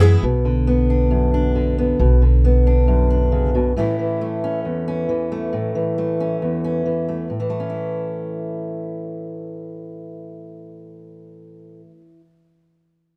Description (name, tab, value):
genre	indie folk with a building arrangement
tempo	136 BPM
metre	4/4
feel	straight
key	A major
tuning	A4 = 441 Hz
part	upright bass	bass	0.0-3.7 s	B1 to F#2	-18 LUFS	equal	none
part	fingerpicked steel-string acoustic guitar	accompaniment	0.2-12.2 s	E2 to E4	-24 LUFS	equal	plate reverb
room	light reverb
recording	dark, warm production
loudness	-20 LUFS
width	mono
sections	0.2-7.3 A section; 7.3-10.8 B section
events	none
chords	0.2 Bm; 3.8 A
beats	| 0.23 0.67 1.11 1.55 | 1.99 2.43 2.87 3.31 | 3.75 4.20 4.64 5.08 | 5.52 5.97 6.41 6.85 | 7.30 7.74 8.18 8.63 | 9.07 9.52 9.96 10.40